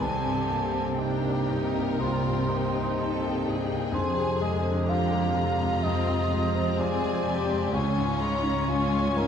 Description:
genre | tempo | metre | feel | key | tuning
cinematic, emotional film score for orchestra | 63 BPM | 4/4 | rubato | unclear | A4 = 443 Hz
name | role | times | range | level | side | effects
rich studio violin section | melody | 0.0-9.3 s | G5 to A#5 | -36 LUFS | left 3 dB | none
dark cor anglais | second line | 0.0-9.3 s | G4 to F5 | -31 LUFS | right 2 dB | none
rich studio violin section | second line | 0.0-9.3 s | F4 to Bb4 | -35 LUFS | left 6 dB | none
bright concert grand piano | accompaniment | 0.0-9.3 s | C2 to F4 | -29 LUFS | left 3 dB | none
rich studio viola section | accompaniment | 0.0-9.3 s | D3 to E#4 | -34 LUFS | left 2 dB | none
rich studio cello section | bass | 0.0-9.3 s | C#2 to C3 | -30 LUFS | right 3 dB | none
room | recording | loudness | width
moderate scoring stage reverb, RT60 1.8 s | dark, warm production | -24 LUFS | side -8 dB against mid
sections
0.0-9.3 A section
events
none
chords
0.0 Cm7; 3.9 Fm7; 7.7 C#

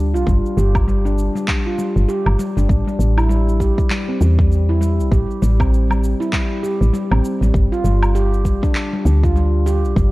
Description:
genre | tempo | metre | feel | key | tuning
organic downtempo | 99 BPM | 4/4 | swing 59% on 16ths | A minor | A4 = 440 Hz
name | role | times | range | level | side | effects
woody FM bass | bass | 0.0-10.1 s | G1 to E2 | -15 LUFS | equal | tube saturation
handpan | arpeggios | 0.1-10.1 s | G3 to G4 | -21 LUFS | equal | vintage 12-bit sampler grit, low-pass filter, digital delay
electronic shaker, woodblock and handclaps | drums | 0.2-10.1 s | none | -26 LUFS | equal | none
electronic kick drum | drums | 0.3-10.1 s | none | -19 LUFS | equal | none
room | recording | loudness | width
digital ambience | worn, warbling old tape, cassette tape, warbly pitch drift | -15 LUFS | side -19 dB against mid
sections
0.0-10.1 A section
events
none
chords
0.0 G5; 2.7 A7(no3); 7.5 G5

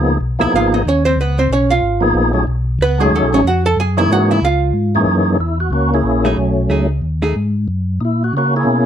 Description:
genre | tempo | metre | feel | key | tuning
jazz | 185 BPM | 4/4 | swing 61% on 8ths | F# major | A4 = 440 Hz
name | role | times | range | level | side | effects
percussive tonewheel organ | melody | 0.0-8.9 s | F#2 to G#4 | -16 LUFS | equal | slow rotary speaker, overdrive, chorus vibrato
mellow tonewheel organ | bass | 0.0-8.9 s | G#1 to C#3 | -17 LUFS | left 1 dB | chorus vibrato, slow rotary speaker
archtop guitar, miked and amplified | accompaniment | 0.4-7.3 s | G#3 to A5 | -16 LUFS | right 3 dB | none
room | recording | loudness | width
light reverb | dark, warm production | -13 LUFS | side -9 dB against mid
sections
0.0-5.1 A section; 5.1-8.9 B section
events
hollow-body jazz guitar solo 0.0-5.1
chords
0.0 C#13; 2.5 B13; 3.8 F#13; 4.4 C#69; 5.1 F#13; 6.4 B13; 7.7 F#9

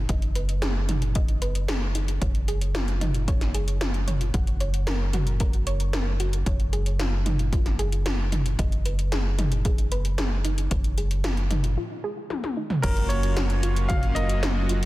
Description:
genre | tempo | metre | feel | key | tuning
synthwave | 113 BPM | 4/4 | straight | F# major | A4 = 441 Hz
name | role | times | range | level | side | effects
tight sequencer bass | bass | 0.0-14.9 s | F#1 | -25 LUFS | equal | sidechain pumping
soft round pluck | arpeggios | 0.1-14.8 s | D#4 to F#5 | -34 LUFS | equal | chorus, digital delay
80s electronic pad drums | drums | 0.1-14.9 s | crash cymbal, hi-hat, snare drum, toms | -30 LUFS | equal | gated reverb on snare and toms
electronic kick drum | drums | 0.1-14.0 s | none | -25 LUFS | equal | none
bright electric grand piano | melody | 12.8-14.6 s | A#4 to E#5 | -30 LUFS | equal | digital delay
soft supersaw | sustained chords | 12.8-14.9 s | F#3 to F#4 | -31 LUFS | left 1 dB | sidechain pumping
room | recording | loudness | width
little or no reverb | dense, heavily limited modern master | -22 LUFS | side -17 dB against mid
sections
0.0-12.8 A section; 12.8-14.9 B section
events
break 11.8-12.8; drum fill 12.3-12.8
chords
0.1 G#m/F#; 2.2 C#add9/F#; 4.3 F#; 6.5 C#add9/F#; 8.6 G#m/F#; 10.7 C#add9/F#; 12.8 F#maj7

